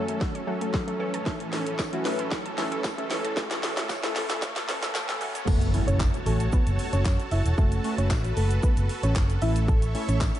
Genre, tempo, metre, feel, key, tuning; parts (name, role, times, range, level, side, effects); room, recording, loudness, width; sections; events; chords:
dance-pop; 114 BPM; 4/4; straight; A4 = 440 Hz
glassy digital keys; accompaniment; 0.0-10.4 s; E3 to C#6; -33 LUFS; left 1 dB; chorus, sidechain pumping
supersaw pad; sustained chords; 0.0-10.4 s; F#2 to C#6; -34 LUFS; right 2 dB; sidechain pumping
wide unison pluck; arpeggios; 0.0-5.4 s; F#3 to A5; -38 LUFS; right 2 dB; sidechain pumping, ping-pong delay
riser and impact; sound effects; 0.1-7.6 s; -35 LUFS; equal
house drum kit; drums; 0.1-10.4 s; crash cymbal, handclaps, hi-hat, kick drum, shaker, snare drum; -27 LUFS; equal
tambourine; percussion; 1.8-10.3 s; -45 LUFS; left 8 dB
soft round pluck; melody; 5.5-10.2 s; A3 to E5; -32 LUFS; right 2 dB; chorus, sidechain pumping, ping-pong delay
vintage muted fingered electric bass; bass; 5.5-10.3 s; E1 to F#2; -24 LUFS; equal; sidechain pumping
light reverb, digital ambience; dark, warm production, high-pass filter, nothing above 10.8 kHz; -23 LUFS; side -12 dB against mid
0.0-5.5 A section; 5.5-10.4 B section
build-up 0.0-5.5; drum fill 0.0-5.5; filter sweep 0.0-5.5; synth keys fill 3.9-5.5; drop 5.5-10.4; impact 5.5-7.6
0.0 F#m; 1.0 A; 5.2 F#m; 9.4 A